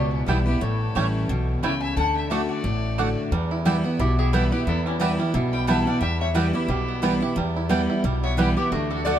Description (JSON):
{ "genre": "bluegrass", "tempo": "178 BPM", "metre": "4/4", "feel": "swing 56% on 8ths", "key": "unclear", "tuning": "A4 = 440 Hz", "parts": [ { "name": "lap resonator guitar", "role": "melody", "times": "0.0-9.2 s", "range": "E4 to B5", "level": "-31 LUFS", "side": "left 3 dB", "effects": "none" }, { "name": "clear fiddle", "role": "second line", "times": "0.0-9.2 s", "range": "C#4 to G5", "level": "-34 LUFS", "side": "left 3 dB", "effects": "none" }, { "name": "picked steel-string acoustic guitar", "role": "accompaniment", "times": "0.0-9.2 s", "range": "E2 to F#4", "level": "-24 LUFS", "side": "equal", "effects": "none" }, { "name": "upright bass", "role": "bass", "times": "0.0-9.2 s", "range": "A1 to E2", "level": "-26 LUFS", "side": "equal", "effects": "none" }, { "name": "bluegrass banjo", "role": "melody", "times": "0.3-9.2 s", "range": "G3 to G4", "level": "-32 LUFS", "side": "right 4 dB", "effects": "tape echo" }, { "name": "mandolin", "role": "stabs", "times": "0.3-9.2 s", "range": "A3 to G5", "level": "-31 LUFS", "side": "right 5 dB", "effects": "none" } ], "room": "light reverb", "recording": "dark, warm production", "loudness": "-20 LUFS", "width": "side -10 dB against mid", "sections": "0.0-3.3 A section; 3.3-9.2 B section", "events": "none", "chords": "0.0 Em; 0.6 A7; 2.0 D; 3.3 Em", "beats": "0.28 | 0.62 0.95 1.29 1.63 | 1.97 2.30 2.64 2.98 | 3.32 3.65 3.99 4.33 | 4.67 5.00 5.34 5.68 | 6.02 6.36 6.69 7.03 | 7.37 7.71 8.04 8.38 | 8.72 9.06" }